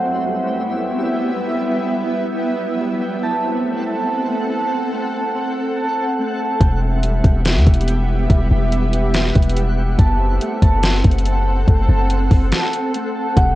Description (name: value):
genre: hip hop, atmospheric cloud-rap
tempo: 142 BPM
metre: 4/4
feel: half-time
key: unclear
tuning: A4 = 440 Hz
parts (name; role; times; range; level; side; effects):
- shimmering ambient pad; sustained chords; 0.0-13.6 s; E3 to G5; -22 LUFS; equal; chorus, built-in reverb, sidechain pumping
- Celtic harp; arpeggios; 0.0-13.6 s; G3 to A5; -24 LUFS; right 2 dB; tape echo
- twinkling granular texture; texture; 0.0-13.6 s; F#3 to F#5; -30 LUFS; left 1 dB; built-in reverb
- long sustained 808-style bass; bass; 6.6-13.6 s; E1 to E2; -16 LUFS; equal; none
- smooth R&B drum kit; drums; 6.6-13.5 s; hi-hat, kick drum, snare drum; -16 LUFS; equal; none
- kalimba; melody; 13.4-13.6 s; F#5; -24 LUFS; equal; tape echo
room: digital ambience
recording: worn, warbling old tape, cassette tape, warbly pitch drift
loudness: -15 LUFS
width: side -16 dB against mid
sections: 0.0-13.4 A section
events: break 12.5-13.4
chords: 0.0 Emadd9; 3.2 F#dim; 6.6 Emadd9; 10.0 F#dim